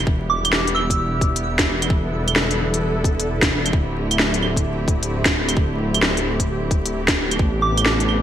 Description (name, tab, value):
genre	future garage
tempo	131 BPM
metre	4/4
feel	swing 63% on 16ths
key	E minor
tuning	A4 = 438 Hz
part	muted studio string section	sustained chords	0.0-8.2 s	C3 to A4	-25 LUFS	equal	vintage 12-bit sampler grit, sidechain pumping
part	dark detuned saw bass	bass	0.0-8.2 s	D1 to A1	-24 LUFS	equal	sidechain pumping
part	electronic kick drum	drums	0.1-7.5 s	none	-20 LUFS	equal	none
part	soft synth bell	melody	0.3-1.1, 7.6-7.9 s	D6 to E6	-24 LUFS	right 2 dB	chorus, phaser, vintage 12-bit sampler grit, digital delay
part	organic electronic drum kit	drums	0.4-8.2 s	claves, hi-hat, snare drum	-20 LUFS	equal	gated reverb
room	moderate lush hall reverb, RT60 2.1 s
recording	bright 1980s-style digital production, vinyl crackle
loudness	-17 LUFS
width	side -10 dB against mid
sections	0.1-8.2 A section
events	none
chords	0.1 Em7; 3.7 D9sus4; 7.4 Am11